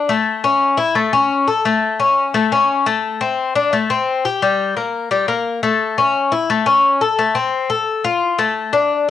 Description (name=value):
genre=latin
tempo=173 BPM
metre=4/4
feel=straight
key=unclear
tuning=A4 = 439 Hz
part: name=Cuban tres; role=solo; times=0.0-9.1 s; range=G3 to A4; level=-14 LUFS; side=left 4 dB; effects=none
room=moderate studio reverb, RT60 0.6 s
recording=home recording on cassette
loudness=-14 LUFS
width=side -11 dB against mid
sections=0.0-7.2 A section; 7.2-9.1 B section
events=none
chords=none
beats=| 0.26 0.60 0.95 1.30 | 1.64 1.99 2.33 2.68 | 3.03 3.37 3.72 4.07 | 4.41 4.76 5.11 5.45 | 5.80 6.14 6.49 6.83 | 7.18 7.53 7.87 8.22 | 8.56 8.91